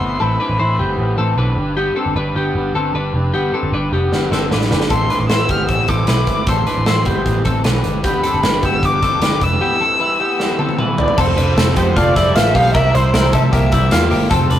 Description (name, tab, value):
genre	jangly indie pop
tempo	153 BPM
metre	4/4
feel	straight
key	A minor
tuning	A4 = 440 Hz
part	dark erhu	melody	0.0-1.0, 4.9-14.1 s	C5 to F6	-19 LUFS	equal	none
part	crunchy overdriven guitar	accompaniment	0.0-14.6 s	A2 to B4	-25 LUFS	right 3 dB	none
part	twelve-string electric guitar	arpeggios	0.0-14.6 s	G3 to C5	-20 LUFS	left 3 dB	spring reverb
part	vintage muted picked electric bass	bass	0.0-14.6 s	F1 to C3	-18 LUFS	equal	none
part	big rock drum kit	drums	4.1-14.6 s	crash cymbal, hi-hat, kick drum, snare drum, toms	-18 LUFS	right 1 dB	none
part	tambourine	percussion	11.2-14.6 s	none	-41 LUFS	right 4 dB	none
room	moderate stone room reverb, RT60 1.2 s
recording	rough rehearsal-room recording, warm saturation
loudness	-13 LUFS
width	side -11 dB against mid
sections	0.0-11.2 A section; 11.2-14.6 B section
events	drum fill 4.1-4.9, 10.4-11.2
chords	0.0 Amadd9; 1.6 G; 4.9 Amadd9; 7.8 G; 9.6 Em; 11.2 F; 12.7 C7